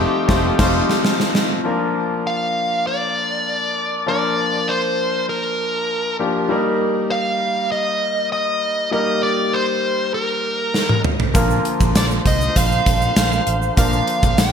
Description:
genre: 1980s-style pop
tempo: 99 BPM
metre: 4/4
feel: straight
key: Bb major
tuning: A4 = 437 Hz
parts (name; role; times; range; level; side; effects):
- dark smooth lead guitar; melody; 0.0-14.5 s; G4 to G5; -20 LUFS; right 1 dB; overdrive
- clear concert grand piano; accompaniment; 0.0-14.5 s; D3 to Bb4; -22 LUFS; left 2 dB; none
- vintage muted fingered electric bass; bass; 0.0-0.8, 11.3-14.5 s; F1 to C2; -22 LUFS; right 1 dB; none
- warm horn section; stabs; 0.3-0.7, 11.3-14.5 s; D3 to C5; -28 LUFS; right 1 dB; ping-pong delay
- gated 80s drum kit; drums; 0.3-1.5, 10.7-14.5 s; crash cymbal, hi-hat, kick drum, snare drum, tambourine, toms; -18 LUFS; equal; none
- tube shaker; percussion; 11.3-14.5 s; none; -35 LUFS; right 10 dB; none
room: wet lush hall reverb, RT60 1.6 s, small room ambience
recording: bright 1980s-style digital production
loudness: -16 LUFS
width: side -7 dB against mid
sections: 0.0-1.7 A section; 1.7-14.5 A section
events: band accent 0.0-1.7; drum fill 0.4-1.7, 10.7-11.3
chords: 0.0 F7; 1.7 Bb; 6.5 Eb; 11.3 Bb

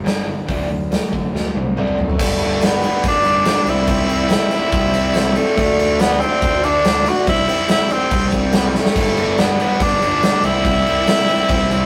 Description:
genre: classic rock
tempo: 142 BPM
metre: 4/4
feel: straight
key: G major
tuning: A4 = 439 Hz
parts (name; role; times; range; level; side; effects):
- biting overdriven guitar; riff; 0.0-11.9 s; G2 to D4; -25 LUFS; equal; none
- sludgy distorted guitar; riff; 0.0-2.2, 9.0-11.9 s; G2 to E4; -28 LUFS; equal; overdrive
- fuzz fingered electric bass; bass; 0.0-11.9 s; G1 to D3; -26 LUFS; equal; overdrive
- big rock drum kit; drums; 0.1-11.8 s; crash cymbal, hi-hat, kick drum, snare drum, toms; -22 LUFS; equal; none
- raspy tenor saxophone; melody; 2.0-11.9 s; G3 to F#4; -20 LUFS; equal; none
- tambourine; percussion; 2.2-11.8 s; none; -46 LUFS; equal; none
room: moderate stone room reverb, RT60 1.2 s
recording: rough rehearsal-room recording, tube saturation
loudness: -17 LUFS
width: mono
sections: 0.0-2.2 A section; 2.2-11.9 B section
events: drum fill 1.3-2.2, 8.7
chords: 0.5 D; 2.2 G; 3.7 C; 5.6 D5; 7.3 C; 9.0 G; 10.4 C

